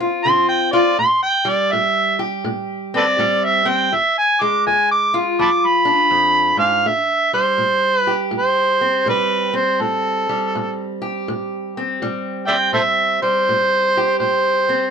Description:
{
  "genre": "acoustic country blues, solo or duo",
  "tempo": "82 BPM",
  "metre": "4/4",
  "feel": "swing 64% on 8ths",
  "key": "A minor",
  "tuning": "A4 = 440 Hz",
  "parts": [
    { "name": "fingerpicked steel-string acoustic guitar", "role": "accompaniment", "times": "0.0-14.9 s", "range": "E2 to G4", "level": "-21 LUFS", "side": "left 1 dB", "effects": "none" },
    { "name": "overdriven harmonica", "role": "melody", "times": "0.2-14.9 s", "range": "A4 to D6", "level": "-15 LUFS", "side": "right 1 dB", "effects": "none" }
  ],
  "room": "light reverb",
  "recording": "none",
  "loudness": "-15 LUFS",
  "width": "side -6 dB against mid",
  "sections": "0.0-6.9 A section; 6.9-14.9 B section",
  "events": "harmonica solo 0.0-6.9",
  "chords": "0.0 Dm7; 1.0 Am7; 3.9 E7b9; 6.9 Am7"
}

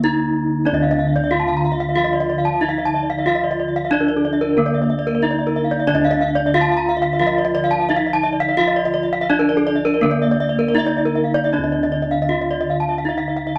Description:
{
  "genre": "Balinese gamelan",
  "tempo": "78-92 BPM",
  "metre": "4/4",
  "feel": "straight",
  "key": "D pelog",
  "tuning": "A4 = 438 Hz",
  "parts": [
    { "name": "gamelan-type bronze metallophone", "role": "melody", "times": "0.0-13.6 s", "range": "Bb3 to F4", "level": "-23 LUFS", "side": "equal", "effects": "none" },
    { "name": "gamelan-type bronze metallophone", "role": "accompaniment", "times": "0.0-11.5 s", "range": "D3 to Bb3", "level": "-30 LUFS", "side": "equal", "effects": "none" },
    { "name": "gamelan-type bossed gongs", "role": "bass", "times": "0.0-13.6 s", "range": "D2 to F4", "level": "-27 LUFS", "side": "equal", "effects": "none" },
    { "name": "gamelan-type bronze metallophone", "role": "arpeggios", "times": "0.7-13.6 s", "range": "Bb4 to F5", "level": "-26 LUFS", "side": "equal", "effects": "none" },
    { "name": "gamelan-type bronze metallophone", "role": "arpeggios", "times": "0.7-13.6 s", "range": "A4 to Bb5", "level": "-24 LUFS", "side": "equal", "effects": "none" }
  ],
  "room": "wet studio reverb, RT60 0.5 s",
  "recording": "none",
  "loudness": "-18 LUFS",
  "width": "mono",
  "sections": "0.0-11.5 A section; 11.5-13.6 B section",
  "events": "break 0.0-0.7",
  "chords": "none"
}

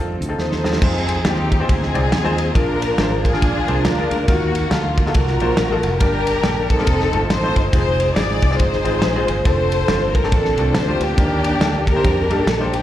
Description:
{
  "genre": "uptempo gospel",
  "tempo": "139 BPM",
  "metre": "4/4",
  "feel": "swing 61% on 8ths",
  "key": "unclear",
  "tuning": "A4 = 441 Hz",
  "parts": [
    { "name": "clear grand piano", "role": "accompaniment", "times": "0.0-12.8 s", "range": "G2 to Eb5", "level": "-24 LUFS", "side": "left 1 dB", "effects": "plate reverb, slapback echo" },
    { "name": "mellow French horn section", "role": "sustained chords", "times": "0.0-0.8 s", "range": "none", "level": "barely audible", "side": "none", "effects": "none" },
    { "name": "fingered electric bass", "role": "bass", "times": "0.0-12.8 s", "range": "F1 to G2", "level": "-22 LUFS", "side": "equal", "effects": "none" },
    { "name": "warm soul drum kit", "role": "drums", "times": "0.2-12.8 s", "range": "crash cymbal, hi-hat, kick drum, ride cymbal, snare drum", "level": "-20 LUFS", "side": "equal", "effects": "none" },
    { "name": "warm studio string section", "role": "melody", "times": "0.4-12.8 s", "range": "Bb3 to D5", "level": "-20 LUFS", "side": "left 1 dB", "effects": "plate reverb, slapback echo" }
  ],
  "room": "light reverb",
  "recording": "live gig heard through the venue's PA, recital hall reverb",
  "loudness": "-15 LUFS",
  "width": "side -12 dB against mid",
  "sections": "0.8-12.8 A section",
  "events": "drum fill 0.4-0.8",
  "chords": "0.0 F7; 0.8 Fm7; 2.6 Bb7; 4.3 Ebmadd9; 6.0 Gm; 6.9 F7; 7.7 Fm7; 9.5 Dm7/F; 11.2 Ebmaj7"
}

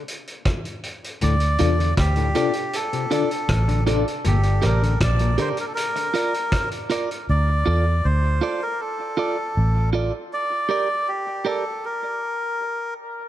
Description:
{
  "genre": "dub reggae",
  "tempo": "79 BPM",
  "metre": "4/4",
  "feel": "straight",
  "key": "D minor",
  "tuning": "A4 = 440 Hz",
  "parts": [
    { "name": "vintage drum kit", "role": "drums", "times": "0.1-7.3 s", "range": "hi-hat, kick drum, rim click", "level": "-27 LUFS", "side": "equal", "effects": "none" },
    { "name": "melodica", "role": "melody", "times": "1.2-12.9 s", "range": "G4 to D5", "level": "-25 LUFS", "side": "equal", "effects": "dub echo" },
    { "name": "mellow clav", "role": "arpeggios", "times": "1.2-5.5 s", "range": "A2 to D3", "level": "-31 LUFS", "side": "left 5 dB", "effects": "dub echo" },
    { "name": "vintage muted fingered electric bass", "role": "bass", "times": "1.2-10.1 s", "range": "G1 to E2", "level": "-19 LUFS", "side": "equal", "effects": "none" },
    { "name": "clean electric guitar", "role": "accompaniment", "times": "1.6-11.6 s", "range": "F4 to D5", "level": "-28 LUFS", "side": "right 5 dB", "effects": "spring reverb, dub echo" },
    { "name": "barky reed electric piano", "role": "stabs", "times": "1.6-4.0 s", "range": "D4 to D5", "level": "-28 LUFS", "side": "left 8 dB", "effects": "overdrive, fast tremolo, dub echo" }
  ],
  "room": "light reverb, studio reverb",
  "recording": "dark, warm production",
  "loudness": "-20 LUFS",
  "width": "side -13 dB against mid",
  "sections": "0.0-13.3 A section",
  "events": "break 0.0-1.2, 7.3-13.3",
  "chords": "0.0 N.C.; 1.2 Dm; 4.2 Gm; 5.8 Bb; 7.3 Dm; 10.3 Gm; 11.8 N.C."
}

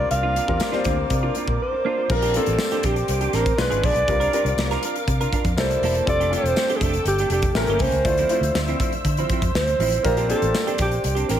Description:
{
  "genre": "polished 1980s jazz-funk pop",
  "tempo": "121 BPM",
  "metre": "4/4",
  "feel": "straight",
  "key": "unclear",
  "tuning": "A4 = 442 Hz",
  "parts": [
    { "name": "breathy alto saxophone", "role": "melody", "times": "0.0-11.4 s", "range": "G4 to F5", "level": "-23 LUFS", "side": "right 1 dB", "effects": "none" },
    { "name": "clear baby grand piano", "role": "accompaniment", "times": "0.0-11.4 s", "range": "G3 to C5", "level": "-27 LUFS", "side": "left 4 dB", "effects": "lush chorus" },
    { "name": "soft string machine", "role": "sustained chords", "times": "0.0-11.4 s", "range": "Bb3 to E6", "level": "-31 LUFS", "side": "equal", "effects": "phaser, ensemble chorus" },
    { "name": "clean electric guitar", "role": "riff", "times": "0.0-11.4 s", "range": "F3 to Bb4", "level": "-29 LUFS", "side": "right 7 dB", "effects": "analog chorus" },
    { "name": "vintage muted fingered electric bass", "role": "bass", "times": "0.0-11.4 s", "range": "E1 to D3", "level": "-25 LUFS", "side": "equal", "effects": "none" },
    { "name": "modern studio drum kit", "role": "drums", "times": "0.1-11.4 s", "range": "crash cymbal, hi-hat, kick drum, snare drum", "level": "-26 LUFS", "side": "equal", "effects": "gated reverb" },
    { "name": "tambourine", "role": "percussion", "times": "0.6-10.7 s", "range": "none", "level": "-37 LUFS", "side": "left 8 dB", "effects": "none" }
  ],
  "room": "studio reverb",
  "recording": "none",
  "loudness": "-19 LUFS",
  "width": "side -10 dB against mid",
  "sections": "0.0-2.1 A section; 2.1-11.4 B section",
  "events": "none",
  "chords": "0.0 C9sus4; 2.1 Bb69; 3.6 Bdim7; 4.1 C9sus4; 5.6 C13; 6.1 F69; 7.6 A7b9; 8.1 Dm9; 10.0 Bb69"
}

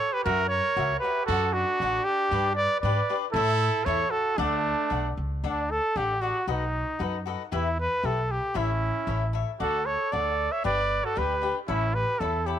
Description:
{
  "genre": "mexican folk, mariachi",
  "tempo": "116 BPM",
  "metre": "2/4",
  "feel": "straight",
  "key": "D major",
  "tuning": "A4 = 441 Hz",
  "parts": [
    { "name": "clear trumpet", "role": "melody", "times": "0.0-12.6 s", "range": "D4 to E5", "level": "-26 LUFS", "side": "equal", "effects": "none" },
    { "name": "clear trumpet", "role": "second line", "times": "0.0-5.2, 8.6-12.6 s", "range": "A3 to C#5", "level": "-32 LUFS", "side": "right 14 dB", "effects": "none" },
    { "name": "cavaquinho", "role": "accompaniment", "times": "0.3-12.6 s", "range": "D4 to B5", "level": "-34 LUFS", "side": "left 12 dB", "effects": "none" },
    { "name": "upright bass", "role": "bass", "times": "0.3-12.5 s", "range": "G1 to A2", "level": "-30 LUFS", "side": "equal", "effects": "none" }
  ],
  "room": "light reverb, small room ambience",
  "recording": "1960s-style stereo with parts hard left and right",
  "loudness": "-24 LUFS",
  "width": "side -10 dB against mid",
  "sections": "0.0-5.4 A section; 5.4-12.6 B section",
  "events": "none",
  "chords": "0.3 F#7; 1.3 D7/F#; 2.3 G; 3.3 A; 4.4 D; 6.5 B7; 7.5 Em; 8.5 A; 9.6 D; 10.6 G; 11.7 Aadd9"
}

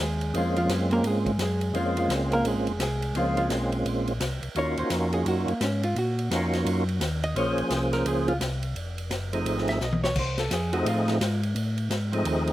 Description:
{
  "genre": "soul jazz organ trio",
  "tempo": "171 BPM",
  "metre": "4/4",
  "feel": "swing 63% on 8ths",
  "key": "Bb minor",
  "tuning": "A4 = 440 Hz",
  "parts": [
    { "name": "hollow-body jazz guitar", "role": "accompaniment", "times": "0.0-11.4 s", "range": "F3 to E5", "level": "-29 LUFS", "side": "right 1 dB", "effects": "slapback echo" },
    { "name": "mellow tonewheel organ", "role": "bass", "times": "0.0-12.5 s", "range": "F1 to Bb2", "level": "-28 LUFS", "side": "equal", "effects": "slow rotary speaker" },
    { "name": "swinging big-band drum kit", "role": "drums", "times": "0.2-12.5 s", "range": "crash cymbal, hi-hat, kick drum, ride cymbal, snare drum, toms", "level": "-32 LUFS", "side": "equal", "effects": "none" },
    { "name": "percussive tonewheel organ", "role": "melody", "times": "0.3-12.5 s", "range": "F3 to C5", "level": "-27 LUFS", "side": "right 1 dB", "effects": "slow rotary speaker, overdrive, chorus vibrato, slapback echo" }
  ],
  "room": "little or no reverb",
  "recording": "recorded outdoors, with no room sound",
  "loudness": "-24 LUFS",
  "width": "side -14 dB against mid",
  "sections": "0.0-12.5 A section",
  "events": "hollow-body jazz guitar solo 0.0-12.5; drum fill 9.8-10.2",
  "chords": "0.0 Bbm9; 4.6 Ebm9; 7.4 Bbm9; 8.8 F7#9"
}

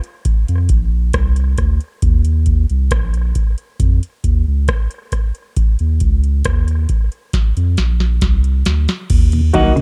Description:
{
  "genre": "dub reggae",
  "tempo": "68 BPM",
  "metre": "4/4",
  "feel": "straight",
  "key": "Eb dorian",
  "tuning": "A4 = 442 Hz",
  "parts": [
    { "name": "booming analog drum machine", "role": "drums", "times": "0.0-9.8 s", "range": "crash cymbal, hi-hat, kick drum, rim click, snare drum", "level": "-18 LUFS", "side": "equal", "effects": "none" },
    { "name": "warm sub bass", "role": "bass", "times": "0.5-9.8 s", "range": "Bb1 to F2", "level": "-17 LUFS", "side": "equal", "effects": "none" },
    { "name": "mellow tonewheel organ", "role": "accompaniment", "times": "9.3-9.8 s", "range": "Eb2 to Gb4", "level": "-25 LUFS", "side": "equal", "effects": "none" },
    { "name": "clean electric guitar", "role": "accompaniment", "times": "9.5-9.7 s", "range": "Gb3 to Gb4", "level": "-21 LUFS", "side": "equal", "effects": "none" },
    { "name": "semi-hollow electric guitar", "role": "arpeggios", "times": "9.5-9.8 s", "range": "Db3 to Eb3", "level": "-21 LUFS", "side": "equal", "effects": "none" },
    { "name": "dark concert grand piano", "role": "stabs", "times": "9.5-9.7 s", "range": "Gb4 to Gb5", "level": "-18 LUFS", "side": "equal", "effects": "none" }
  ],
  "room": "little or no reverb",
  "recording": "dark, warm production",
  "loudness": "-16 LUFS",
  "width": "mono",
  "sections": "0.0-9.1 A section",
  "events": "break 0.0-9.1; drum fill 7.3-9.1",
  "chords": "0.3 F5; 2.0 Eb5; 3.8 Dbadd9; 5.6 Dbsus2; 7.3 F5; 9.1 Ebm"
}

